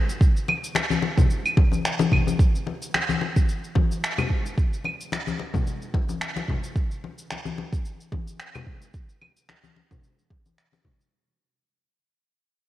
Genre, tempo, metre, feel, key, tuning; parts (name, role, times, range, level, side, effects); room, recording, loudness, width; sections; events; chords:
downtempo; 110 BPM; 4/4; swing 55% on 16ths
electronic cabasa, claves and finger snaps; drums; 0.1-11.1 s; -28 LUFS; right 1 dB; cassette tape
electronic kick drum; drums; 0.2-11.0 s; -21 LUFS; right 1 dB; cassette tape
congas; percussion; 0.5-11.0 s; -28 LUFS; left 5 dB
moderate lush hall reverb, RT60 1.9 s, digital ambience; home recording on cassette; -22 LUFS; side -14 dB against mid
0.0-2.4 A section; 2.4-11.1 B section
fade-out 2.4-11.1